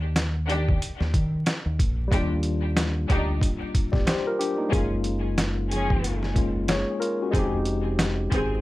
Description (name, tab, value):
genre	hip hop, boom-bap hip-hop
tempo	92 BPM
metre	4/4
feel	swing 57% on 16ths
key	Eb major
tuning	A4 = 440 Hz
part	deep dub fingered electric bass	bass	0.0-8.6 s	F1 to Eb3	-27 LUFS	equal	none
part	trip hop sampler-style drum kit	drums	0.2-8.5 s	hi-hat, kick drum, snare drum	-25 LUFS	equal	none
part	warm studio string section	stabs	0.5-8.6 s	Eb3 to Ab4	-31 LUFS	left 1 dB	high-pass filter, low-pass filter, digital delay, plate reverb
part	tine electric piano	accompaniment	2.1-8.6 s	G3 to D5	-27 LUFS	left 2 dB	medium stereo tremolo, cassette tape, high-pass filter, low-pass filter, plate reverb
room	light reverb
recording	vinyl crackle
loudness	-22 LUFS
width	side -17 dB against mid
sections	0.0-8.6 A section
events	break 0.0-2.1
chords	0.0 Bbadd11; 2.1 Ebmaj7; 4.7 Gbmaj9; 7.3 Fm9